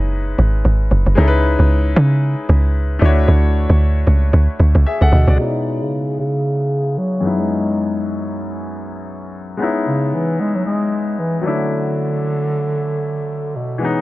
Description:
amapiano; 114 BPM; 4/4; swing 58% on 16ths; A4 = 440 Hz
clear grand piano; accompaniment; 0.0-14.0 s; F#2 to F#5; -22 LUFS; left 3 dB; low-pass filter
woody log drum bass; bass; 0.0-5.4 s; F#1 to C#3; -12 LUFS; equal
breathy bass clarinet; melody; 5.1-14.0 s; B2 to G#3; -20 LUFS; equal; low-pass filter, digital delay
small room ambience; faint mains hum; -14 LUFS; side -18 dB against mid
0.0-5.4 A section; 5.4-14.0 B section
drop 0.0-5.4; filter sweep 5.4-14.0
0.0 F#13sus4; 1.2 C#m9; 3.0 Dmaj9; 5.4 C#m9; 7.2 F#13sus4; 9.6 C#m9; 11.4 Dmaj9

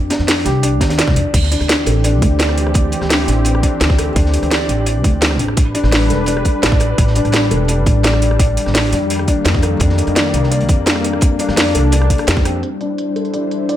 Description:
liquid drum and bass; 170 BPM; 4/4; straight; A4 = 440 Hz
felt-muted upright piano; arpeggios; 0.0-13.8 s; C4 to D5; -20 LUFS; equal; low-pass filter, ping-pong delay
upright bass; bass; 0.0-12.6 s; E1 to F2; -17 LUFS; equal
crunchy breakbeat drum kit; drums; 0.1-12.5 s; hi-hat, snare drum; -25 LUFS; equal; high-pass filter on hats, high-pass filter on snare, high-pass filter on room
garage drum kit; drums; 0.1-13.8 s; crash cymbal, hi-hat, rim click, snare drum; -19 LUFS; equal; low-pass filter on snare, low-pass filter on hats, low-pass filter on cymbals, low-pass filter on room
electronic kick drum; drums; 0.8-12.4 s; -15 LUFS; equal
warm analog pad; sustained chords; 1.6-13.8 s; Eb3 to C5; -22 LUFS; left 2 dB; chorus, sidechain pumping
small room reverb; -12 LUFS; side -12 dB against mid
0.0-12.6 A section; 12.6-13.8 B section
filter sweep on drum 12.6-13.8; filter sweep on analog synth pad 12.6-13.8
0.0 Fsus2; 1.3 D9sus4; 5.4 A9sus4; 8.9 F9sus4; 12.6 D9sus4

